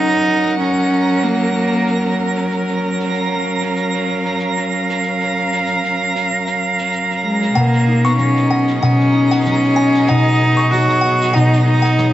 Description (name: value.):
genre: folktronica.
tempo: 95 BPM.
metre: 4/4.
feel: swing 56% on 16ths.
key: F# major.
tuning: A4 = 441 Hz.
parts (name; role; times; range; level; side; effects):
dark cello; melody; 0.0-2.1, 7.2-12.1 s; G#3 to F#4; -16 LUFS; equal; vintage 12-bit sampler grit.
warm string quartet; sustained chords; 0.0-12.1 s; B2 to F#5; -19 LUFS; right 1 dB; none.
concert harp; arpeggios; 0.0-0.2, 7.6-12.1 s; B2 to D#4; -16 LUFS; left 1 dB; none.
twinkling granular texture; texture; 0.0-12.1 s; A#5; -26 LUFS; right 2 dB; built-in reverb.
hi-hat and shaker; drums; 0.2-12.1 s; none; -35 LUFS; right 4 dB; low-pass filter on cymbals, low-pass filter on hats, low-pass filter on perc, low-pass filter on snare, low-pass filter on room.
music box; second line; 7.6-12.0 s; F#5 to C#6; -22 LUFS; equal; tape echo.
room: moderate plate reverb, RT60 3.0 s.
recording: nothing above 8.0 kHz.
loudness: -14 LUFS.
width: side -13 dB against mid.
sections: 0.0-12.1 A section.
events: none.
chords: 0.0 F#; 7.6 B6.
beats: 0.61 1.24 1.88 | 2.51 3.14 3.77 4.40 | 5.03 5.66 6.30 6.93 | 7.56 8.19 8.82 9.45 | 10.09 10.72 11.35 11.98.